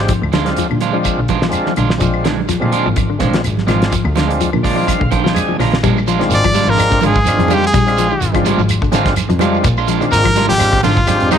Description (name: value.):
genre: afrobeat.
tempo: 126 BPM.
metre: 4/4.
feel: swing 54% on 16ths.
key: Bb mixolydian.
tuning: A4 = 439 Hz.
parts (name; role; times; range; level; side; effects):
overdriven tonewheel organ; accompaniment; 0.0-11.4 s; Ab3 to Bb5; -21 LUFS; equal; slow rotary speaker.
electric guitar at the edge of break-up; arpeggios; 0.0-11.4 s; D3 to G3; -20 LUFS; left 10 dB; analog chorus.
clear double bass; bass; 0.0-11.4 s; Ab1 to Bb2; -18 LUFS; equal; none.
damped 70s drum kit; drums; 0.1-11.4 s; hi-hat, kick drum, snare drum; -20 LUFS; equal; none.
shekere; percussion; 0.1-11.4 s; none; -25 LUFS; right 4 dB; none.
claves; percussion; 0.2-11.4 s; none; -29 LUFS; left 16 dB; none.
electric guitar at the edge of break-up; stabs; 0.3-11.4 s; F3 to F4; -21 LUFS; right 10 dB; none.
congas; percussion; 0.3-11.4 s; none; -24 LUFS; right 11 dB; none.
brilliant trumpet; melody; 6.3-11.4 s; Eb4 to D5; -15 LUFS; equal; none.
room: light reverb, small room ambience.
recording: 1960s-style stereo with parts hard left and right.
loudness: -12 LUFS.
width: side -8 dB against mid.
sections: 0.0-5.8 A section; 5.8-11.4 B section.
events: tonewheel organ fill 4.4-5.8; drum fill 5.2-5.8.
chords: 0.0 Bb7.